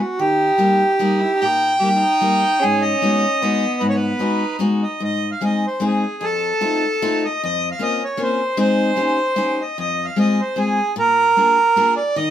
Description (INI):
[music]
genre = musette waltz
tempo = 150 BPM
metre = 3/4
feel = swing 54% on 8ths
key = G# minor, Ab major from 5.0 s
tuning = A4 = 438 Hz
[part]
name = accordion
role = melody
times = 0.0-12.3 s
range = F#4 to G5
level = -18 LUFS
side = right 1 dB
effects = none
[part]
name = rich violin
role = second line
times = 0.2-4.8 s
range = B3 to G4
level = -25 LUFS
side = right 3 dB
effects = none
[part]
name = picked steel-string acoustic guitar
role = accompaniment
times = 0.2-12.3 s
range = F2 to Ab4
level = -21 LUFS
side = left 2 dB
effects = none
[sound]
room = moderate studio reverb, RT60 0.6 s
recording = band playing live in one room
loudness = -16 LUFS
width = side -10 dB against mid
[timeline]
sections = 0.0-5.0 A section; 5.0-12.3 B section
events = none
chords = 0.2 D#; 2.6 G#m7; 5.0 Ab; 6.2 F7; 7.4 Bbmadd9/F; 8.6 Ab; 9.0 Eb7; 9.8 Fm; 11.0 Bb7